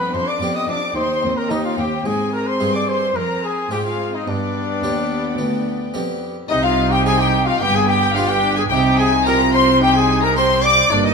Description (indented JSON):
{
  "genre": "classical, baroque-style concerto movement with solo episodes",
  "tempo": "109 BPM",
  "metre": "4/4",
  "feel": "straight",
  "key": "C minor",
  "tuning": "A4 = 440 Hz",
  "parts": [
    { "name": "mellow trumpet", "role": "melody", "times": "0.0-11.1 s", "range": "D4 to Eb5", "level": "-21 LUFS", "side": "left 2 dB", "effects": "none" },
    { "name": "warm chamber violin section", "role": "melody", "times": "0.0-11.1 s", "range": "D5 to D6", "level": "-25 LUFS", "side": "left 4 dB", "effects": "none" },
    { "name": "rich chamber violin section", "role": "second line", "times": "0.0-11.1 s", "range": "D5 to Eb6", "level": "-22 LUFS", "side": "left 3 dB", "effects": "none" },
    { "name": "harpsichord", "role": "accompaniment", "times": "0.0-11.1 s", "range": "D2 to Ab4", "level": "-25 LUFS", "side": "equal", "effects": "none" },
    { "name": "warm chamber viola section", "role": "accompaniment", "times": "0.0-11.1 s", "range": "Bb3 to F4", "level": "-26 LUFS", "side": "right 2 dB", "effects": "none" },
    { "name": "rich chamber cello section", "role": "bass", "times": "0.1-11.1 s", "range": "D2 to C3", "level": "-23 LUFS", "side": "right 2 dB", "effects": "none" },
    { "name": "rich chamber double bass section", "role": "bass", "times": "6.5-11.1 s", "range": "G1 to C2", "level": "-24 LUFS", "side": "right 4 dB", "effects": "none" }
  ],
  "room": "wet recital hall reverb, RT60 1.4 s",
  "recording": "none",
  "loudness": "-15 LUFS",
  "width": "side -5 dB against mid",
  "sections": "0.0-6.5 A section; 6.5-11.1 B section",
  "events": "none",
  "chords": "0.0 G7/F; 1.0 Cm/Eb; 2.1 Ab; 3.2 Fm; 4.3 G; 6.5 Cm; 7.6 G7; 8.7 Cm"
}